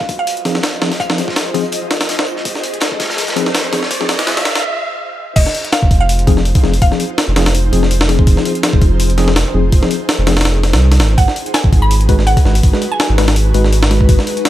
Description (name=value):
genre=drum and bass, jungle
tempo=165 BPM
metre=4/4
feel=swing 55% on 16ths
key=unclear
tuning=A4 = 440 Hz
part: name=mallet-like synth pluck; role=melody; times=0.0-1.4, 5.4-7.2, 11.2-13.1 s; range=Eb5 to Cb6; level=-21 LUFS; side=right 1 dB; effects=lush chorus, dub echo
part: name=ethereal airy pad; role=sustained chords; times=0.0-14.5 s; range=Eb4 to Eb5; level=-24 LUFS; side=equal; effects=ensemble chorus, built-in reverb, tremolo
part: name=breakbeat sampler-style drum kit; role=drums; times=0.0-14.5 s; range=crash cymbal, hi-hat, kick drum, snare drum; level=-15 LUFS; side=equal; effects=high-pass filter on kick, studio reverb, high-pass filter on hats, high-pass filter on snare, high-pass filter on cymbals
part: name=riser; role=sound effects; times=1.3-4.6 s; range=none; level=-24 LUFS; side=right 2 dB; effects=none
part: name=crunchy breakbeat drum kit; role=drums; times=0.1-4.6 s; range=hi-hat, snare drum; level=-24 LUFS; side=equal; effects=high-pass filter on hats, studio reverb, high-pass filter on snare, high-pass filter on room
part: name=mellow tine electric piano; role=stabs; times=0.5-14.5 s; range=F3 to Cb5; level=-19 LUFS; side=left 3 dB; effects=medium stereo tremolo, low-pass filter, dub echo
part: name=saturated sub bass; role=bass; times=5.4-14.2 s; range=F1 to C2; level=-13 LUFS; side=equal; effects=tube saturation
room=light reverb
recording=high-pass filter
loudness=-11 LUFS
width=side -14 dB against mid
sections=0.0-5.4 A section; 5.4-14.5 B section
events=build-up 0.0-5.4; filter sweep on tine electric piano 0.0-5.4; riser 1.3-4.6; break 4.6-5.4; drop 5.4-14.5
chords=0.0 Fm7; 11.2 Abm7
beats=0.27 0.63 | 1.00 1.36 1.73 2.09 | 2.45 2.82 3.18 3.54 | 3.91 4.27 4.63 5.00 | 5.36 5.72 6.09 6.45 | 6.82 7.18 7.54 7.91 | 8.27 8.63 9.00 9.36 | 9.72 10.09 10.45 10.82 | 11.18 11.54 11.91 12.27 | 12.63 13.00 13.36 13.72 | 14.09 14.45